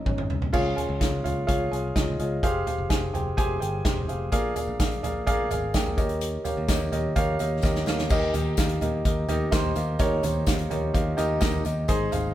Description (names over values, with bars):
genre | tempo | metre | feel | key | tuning
piano-driven pop | 127 BPM | 4/4 | straight | unclear | A4 = 440 Hz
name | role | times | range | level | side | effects
dark upright piano | accompaniment | 0.0-12.3 s | Ab2 to Ab5 | -27 LUFS | equal | none
modern bright picked electric bass | bass | 0.1-12.3 s | F1 to Eb2 | -30 LUFS | equal | none
natural country drum kit | drums | 0.1-12.2 s | crash cymbal, hi-hat, kick drum, snare drum, toms | -27 LUFS | equal | none
tambourine | percussion | 4.3-12.2 s | none | -44 LUFS | left 8 dB | none
room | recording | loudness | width
light reverb | band playing live in one room | -23 LUFS | side -13 dB against mid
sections
0.5-8.1 A section; 8.1-12.3 B section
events
drum fill 0.0-0.5, 7.6-8.1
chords
0.0 Bbm; 0.5 Db; 2.4 Fmadd9; 4.3 Bb7; 6.0 Eb7; 8.1 Eb